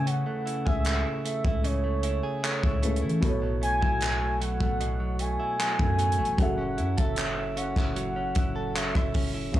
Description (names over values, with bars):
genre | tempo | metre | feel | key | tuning
contemporary R&B | 76 BPM | 4/4 | straight | unclear | A4 = 440 Hz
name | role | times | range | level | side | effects
gliding portamento lead | melody | 0.0-9.3 s | C#5 to G#5 | -31 LUFS | equal | chorus, analog delay
felt-muted upright piano | accompaniment | 0.0-9.6 s | B2 to E5 | -36 LUFS | left 1 dB | none
direct-recorded clean electric guitar | arpeggios | 0.0-9.6 s | B2 to A4 | -32 LUFS | right 2 dB | none
long sustained 808-style bass | bass | 0.0-9.6 s | F#1 to E3 | -30 LUFS | equal | none
crisp fusion drum kit | drums | 0.1-9.6 s | handclaps, hi-hat, kick drum, rim click | -29 LUFS | equal | vintage 12-bit sampler grit
room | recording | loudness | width
little or no reverb | dry, gritty hardware recording, transformer saturation, small room ambience | -24 LUFS | side -13 dB against mid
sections
0.0-9.6 A section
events
none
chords
0.0 Amaj7/C#; 3.2 B7sus4; 6.4 F#m7